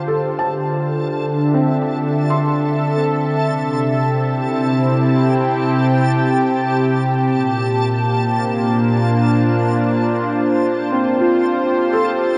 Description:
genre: ambient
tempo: 63 BPM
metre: 4/4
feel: straight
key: unclear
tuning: A4 = 440 Hz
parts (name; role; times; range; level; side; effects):
- warm analog pad; sustained chords; 0.0-12.4 s; Bb2 to G5; -18 LUFS; equal; chorus, shimmer reverb
- felt-muted upright piano; arpeggios; 0.0-4.3, 10.9-12.4 s; C4 to C6; -25 LUFS; equal; analog delay, shimmer reverb
- backwards swelling texture; texture; 0.0-12.4 s; A5; -30 LUFS; equal; built-in reverb, subtle chorus, shimmer reverb
room: wet huge ambient reverb, RT60 7.7 s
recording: dreamy mix soaked in reverb, nothing above 10.8 kHz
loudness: -17 LUFS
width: mono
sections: 0.0-12.4 A section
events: none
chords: 0.0 Dmadd9; 3.5 C; 7.3 Bbadd9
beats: 0.62 1.58 2.53 | 3.48 4.43 5.39 6.34 | 7.29 8.24 9.20 10.15 | 11.10 12.05

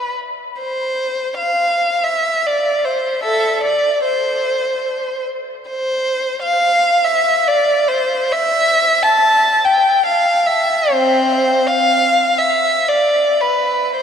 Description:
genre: classical, free, expressive piece for unaccompanied violin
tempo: 54-76 BPM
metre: 3/4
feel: rubato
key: C major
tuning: A4 = 440 Hz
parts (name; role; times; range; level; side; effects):
- rich violin; solo; 0.0-14.0 s; C4 to A5; -14 LUFS; equal; none
room: wet cathedral reverb, RT60 5.5 s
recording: dark, warm production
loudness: -13 LUFS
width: side -8 dB against mid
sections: 0.0-14.0 A section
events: none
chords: none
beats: | 0.60 1.60 2.45 | 3.24 4.04 4.85 | 5.69 6.65 7.46 | 8.32 9.24 10.06 | 10.91 11.90 12.88 | 13.96

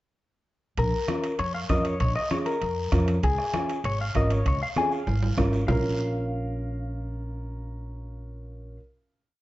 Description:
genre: latin, cumbia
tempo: 196 BPM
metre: 4/4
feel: straight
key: Bb minor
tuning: A4 = 439 Hz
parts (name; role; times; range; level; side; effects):
- clean electric guitar; melody; 0.8-8.8 s; Ab4 to Ab5; -29 LUFS; left 3 dB; spring reverb, slapback echo, plate reverb
- upright bass; bass; 0.8-8.8 s; Ab1 to F2; -28 LUFS; equal; none
- bombo; percussion; 0.8-5.8 s; none; -30 LUFS; right 1 dB; none
- congas; percussion; 0.8-5.8 s; none; -34 LUFS; left 2 dB; none
- guiro; percussion; 0.8-5.8 s; none; -43 LUFS; right 2 dB; none
- timbales; percussion; 0.8-5.8 s; none; -35 LUFS; right 5 dB; none
- dark upright piano; accompaniment; 1.1-8.8 s; Db4 to Bb4; -31 LUFS; right 2 dB; none
room: light reverb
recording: dark, warm production, nothing above 7.8 kHz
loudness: -24 LUFS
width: side -16 dB against mid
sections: 0.8-5.7 A section; 5.7-8.1 final chord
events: drum fill 4.8-5.7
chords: 0.8 Bbm; 3.2 Db; 5.7 Bbm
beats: | 0.78 1.08 1.39 1.70 | 2.01 2.31 2.62 2.93 | 3.23 3.54 3.85 4.16 | 4.46 4.77 5.07 5.38 | 5.68 5.99 6.29 6.60 | 6.90 7.21 7.51 7.82

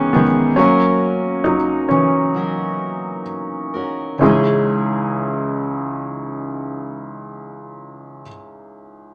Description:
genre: pop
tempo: 64-70 BPM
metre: 4/4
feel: straight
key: C# minor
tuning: A4 = 439 Hz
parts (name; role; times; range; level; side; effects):
- clear upright piano; accompaniment; 0.0-9.1 s; C#2 to G#4; -21 LUFS; equal; none
- fingerpicked steel-string acoustic guitar; arpeggios; 0.0-8.3 s; C#3 to A#4; -25 LUFS; equal; none
room: moderate club reverb, RT60 0.9 s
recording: none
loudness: -19 LUFS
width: mono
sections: 0.0-4.2 A section; 4.2-7.9 B section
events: slowing down 0.0-4.2; upright piano solo 0.0-4.2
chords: 0.0 G#m; 0.6 F#; 4.2 C#madd9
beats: | 0.58 1.45 2.35 3.27 | 4.21 5.15 6.08 7.01

